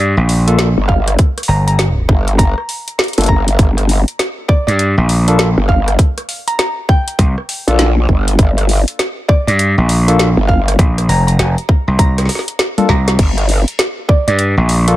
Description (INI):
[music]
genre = glitch hop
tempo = 100 BPM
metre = 4/4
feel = swing 63% on 16ths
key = G minor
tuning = A4 = 440 Hz
[part]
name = gritty slap bass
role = bass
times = 0.0-15.0 s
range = F1 to G2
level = -12 LUFS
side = equal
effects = overdrive
[part]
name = drum and bass drum kit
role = drums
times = 0.3-15.0 s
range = crash cymbal, hi-hat, rim click, snare drum, toms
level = -18 LUFS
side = equal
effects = none
[part]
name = barky tine electric piano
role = stabs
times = 0.5-15.0 s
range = Bb3 to A4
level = -19 LUFS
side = left 2 dB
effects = auto-pan, sidechain pumping, tape echo
[part]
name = growl bass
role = bass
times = 0.8-13.6 s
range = G1 to Bb1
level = -13 LUFS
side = equal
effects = chorus, overdrive
[part]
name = woody wave-folded pluck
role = melody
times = 0.9-14.3 s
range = D5 to Bb5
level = -22 LUFS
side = right 1 dB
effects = chorus, tape echo
[part]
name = electronic kick drum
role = drums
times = 0.9-14.2 s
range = none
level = -12 LUFS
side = equal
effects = none
[sound]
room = little or no reverb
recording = none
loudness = -11 LUFS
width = side -15 dB against mid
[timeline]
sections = 0.0-15.0 A section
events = drum fill 12.7-13.2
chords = 0.0 Gm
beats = 0.59 | 1.19 1.79 2.39 2.99 | 3.59 4.19 4.79 5.39 | 5.99 6.59 7.19 7.79 | 8.39 8.99 9.59 10.19 | 10.79 11.39 11.99 12.59 | 13.19 13.79 14.39